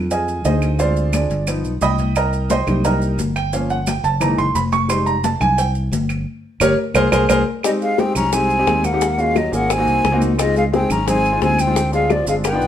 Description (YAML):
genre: Afro-Cuban jazz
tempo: 175 BPM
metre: 4/4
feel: straight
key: unclear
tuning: A4 = 440 Hz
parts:
  - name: fingered electric bass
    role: bass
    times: 0.0-12.7 s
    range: F1 to F2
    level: -21 LUFS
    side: equal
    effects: none
  - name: warm concert grand piano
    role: accompaniment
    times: 0.1-12.7 s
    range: Fb3 to Eb6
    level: -19 LUFS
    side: right 2 dB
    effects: none
  - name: congas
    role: percussion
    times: 0.1-12.7 s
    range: none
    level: -25 LUFS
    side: left 4 dB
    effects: none
  - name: cowbell and bongos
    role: percussion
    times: 0.1-12.6 s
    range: none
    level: -25 LUFS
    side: left 5 dB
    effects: none
  - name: maracas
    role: percussion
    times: 0.1-12.7 s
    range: none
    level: -32 LUFS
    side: right 5 dB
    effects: none
  - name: claves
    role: percussion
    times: 0.6-12.6 s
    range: none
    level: -28 LUFS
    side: right 4 dB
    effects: none
  - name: breathy concert flute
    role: melody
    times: 7.6-12.7 s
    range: D5 to Bb5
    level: -20 LUFS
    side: equal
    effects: none
  - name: breathy tenor saxophone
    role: second line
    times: 7.6-12.7 s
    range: F3 to Db4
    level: -24 LUFS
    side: left 4 dB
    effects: none
room: moderate studio reverb, RT60 0.8 s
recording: band playing live in one room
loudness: -15 LUFS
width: side -10 dB against mid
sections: 0.0-7.6 A section; 7.6-12.7 B section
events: grand piano solo 0.0-7.6; band accent 6.3-7.6; drum fill 7.1-7.6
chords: 0.0 Dbmaj9 (rootless); 0.8 Dm7b5; 1.5 G7b13; 2.2 Cm7; 3.5 Gm7b5; 4.2 Gb13; 4.9 Fm9; 6.3 Gdim; 7.0 Abadd9/C; 7.6 Abmaj9; 9.0 Ebm7; 9.7 Ab7; 10.4 Dbmaj9; 11.8 Dm7b5